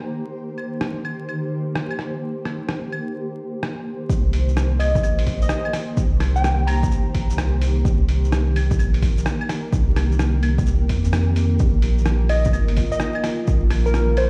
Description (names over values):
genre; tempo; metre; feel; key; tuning
future garage; 128 BPM; 4/4; swing 66% on 16ths; C minor; A4 = 440 Hz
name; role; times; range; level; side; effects
granular cloud pad; sustained chords; 0.0-14.3 s; Eb3 to C5; -30 LUFS; equal; built-in reverb, sidechain pumping
lo-fi sampler-style drum kit; drums; 0.6-14.3 s; claves, hi-hat, rim click, shaker; -31 LUFS; equal; none
warm sub bass; bass; 4.1-14.3 s; Ab1 to F2; -22 LUFS; equal; sidechain pumping
electronic kick drum; drums; 4.1-13.6 s; none; -23 LUFS; equal; overdrive
glassy wavetable pluck; melody; 4.8-7.1, 12.3-14.3 s; Bb4 to Bb5; -28 LUFS; equal; chorus, tape echo
room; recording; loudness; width
light reverb; played on a big sound system in a bare room, stone room reverb, vinyl crackle; -21 LUFS; mono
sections
0.0-4.1 A section; 4.1-14.3 B section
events
none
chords
0.0 Cm7; 11.6 Bbsus4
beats
| 0.34 0.81 1.28 1.75 | 2.22 2.69 3.16 3.63 | 4.09 4.56 5.03 5.50 | 5.97 6.44 6.91 7.38 | 7.84 8.31 8.78 9.25 | 9.72 10.19 10.66 11.13 | 11.60 12.06 12.53 13.00 | 13.47 13.94